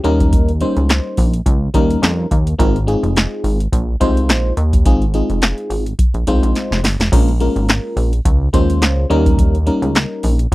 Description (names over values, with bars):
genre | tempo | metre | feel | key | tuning
early-eighties boogie funk | 106 BPM | 4/4 | swing 56% on 16ths | Bb dorian | A4 = 440 Hz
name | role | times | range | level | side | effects
FM electric piano | accompaniment | 0.0-10.4 s | G3 to C5 | -18 LUFS | left 1 dB | chorus
chorused synth bass | bass | 0.0-10.5 s | F1 to F2 | -16 LUFS | equal | none
electro analog drum machine | drums | 0.0-10.5 s | crash cymbal, handclaps, hi-hat, kick drum, snare drum | -16 LUFS | equal | none
room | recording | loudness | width
little or no reverb | dry, close 1970s-style studio recording | -13 LUFS | side -19 dB against mid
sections
0.0-7.1 A section; 7.1-10.5 A section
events
drum fill 6.6-7.1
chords
0.0 Eb7; 2.6 Ab69; 7.1 Bbm7; 9.1 Eb7